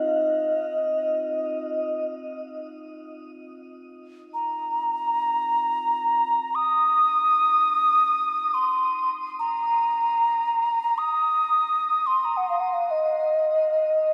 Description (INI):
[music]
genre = world meditative, free-time meditation music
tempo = free time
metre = none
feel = none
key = unclear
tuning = A4 = 440 Hz
[part]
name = mellow hollow alto ocarina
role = melody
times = 0.0-14.1 s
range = Eb5 to Eb6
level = -23 LUFS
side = equal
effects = shimmer reverb
[part]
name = quartz singing bowl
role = texture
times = 0.0-3.6 s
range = C4 to F4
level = -43 LUFS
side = equal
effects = shimmer reverb
[sound]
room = wet lush hall reverb, RT60 2.9 s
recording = dreamy mix soaked in reverb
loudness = -23 LUFS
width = mono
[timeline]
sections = 0.0-14.1 A section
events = none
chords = none